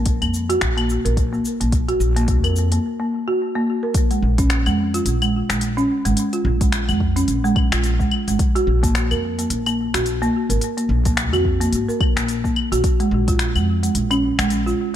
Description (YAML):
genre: organic downtempo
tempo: 108 BPM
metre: 4/4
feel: swing 58% on 16ths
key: Bb minor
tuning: A4 = 440 Hz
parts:
  - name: upright bass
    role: bass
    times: 0.0-14.7 s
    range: Ab1 to F2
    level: -21 LUFS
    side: equal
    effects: none
  - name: afro-pop drum kit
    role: drums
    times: 0.1-14.8 s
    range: claves, finger snaps, hi-hat, shaker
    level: -25 LUFS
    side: left 4 dB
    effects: none
  - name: electronic kick drum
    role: drums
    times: 0.1-13.4 s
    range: none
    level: -21 LUFS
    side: equal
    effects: none
  - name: folk marimba with medium hard mallets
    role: arpeggios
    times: 0.2-14.8 s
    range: Ab3 to Bb4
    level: -21 LUFS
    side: right 1 dB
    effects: ping-pong delay
room: light reverb, digital ambience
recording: dark, warm production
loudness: -17 LUFS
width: side -11 dB against mid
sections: 0.0-3.9 A section; 3.9-15.0 B section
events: break 2.8-3.9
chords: 0.0 Bb5; 3.9 Bb7(no3); 8.4 Gbmaj7 (rootless); 12.8 Bb7(no3)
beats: 0.06 0.61 1.17 | 1.73 2.28 2.84 3.39 | 3.95 4.50 5.06 5.61 | 6.17 6.72 7.28 7.84 | 8.39 8.95 9.50 10.06 | 10.61 11.17 11.72 12.28 | 12.84 13.39 13.95 14.50